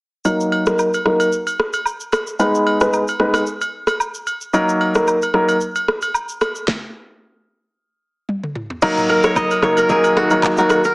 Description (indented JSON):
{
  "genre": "afrobeats",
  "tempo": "112 BPM",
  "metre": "4/4",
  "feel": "swing 55% on 16ths",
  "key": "Eb minor",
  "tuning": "A4 = 441 Hz",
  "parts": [
    { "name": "warm baby grand piano", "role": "accompaniment", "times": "0.2-5.5, 8.8-10.8 s", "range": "Gb3 to Cb5", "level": "-16 LUFS", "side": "equal", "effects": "low-pass filter" },
    { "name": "afro-pop drum kit", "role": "drums", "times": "0.3-10.9 s", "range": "crash cymbal, handclaps, kick drum, rim click, shaker, snare drum, toms", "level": "-21 LUFS", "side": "equal", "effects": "none" },
    { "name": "agogo bells and woodblock", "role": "percussion", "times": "0.3-10.8 s", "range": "none", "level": "-23 LUFS", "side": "right 1 dB", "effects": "none" },
    { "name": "deep dark ambient pad", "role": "sustained chords", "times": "10.1-10.9 s", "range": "Eb3 to Bb4", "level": "-28 LUFS", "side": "equal", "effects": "none" },
    { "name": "punchy sub bass", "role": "bass", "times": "8.8-10.2 s", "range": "Eb1 to Gb1", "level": "-36 LUFS", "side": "equal", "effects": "none" },
    { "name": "kora", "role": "riff", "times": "9.1-10.9 s", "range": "Gb4 to Eb5", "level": "-18 LUFS", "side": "right 1 dB", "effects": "tape echo" }
  ],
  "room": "light reverb, digital ambience",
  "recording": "heavily compressed radio sound, small speaker sound",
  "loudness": "-15 LUFS",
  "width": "side -30 dB against mid",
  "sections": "0.3-8.8 A section; 8.8-10.9 B section",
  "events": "filter sweep on grand piano 0.3-8.8; stop 6.7-8.8; drum fill 8.3-8.8",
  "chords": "0.3 Ebm; 2.4 Abm; 4.5 Ebm; 6.7 N.C.; 8.8 Ebm"
}